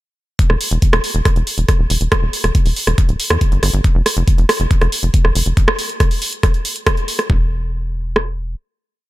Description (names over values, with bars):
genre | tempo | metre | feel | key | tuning
psychedelic trance | 139 BPM | 4/4 | straight | E phrygian | A4 = 441 Hz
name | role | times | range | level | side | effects
drum and bass drum kit | drums | 0.4-8.3 s | kick drum, rim click | -14 LUFS | equal | overdrive
drum and bass drum kit | drums | 0.4-7.3 s | hi-hat, rim click | -19 LUFS | right 1 dB | overdrive
tight sequencer bass | bass | 0.5-8.6 s | D1 to E2 | -18 LUFS | equal | none
room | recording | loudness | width
little or no reverb | none | -14 LUFS | side -17 dB against mid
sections
0.4-7.3 groove; 7.3-9.1 final note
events
none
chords
none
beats
| 0.39 0.82 1.25 1.69 | 2.12 2.55 2.98 3.41 | 3.84 4.28 4.71 5.14 | 5.57 6.00 6.43 6.87 | 7.30 7.73 8.16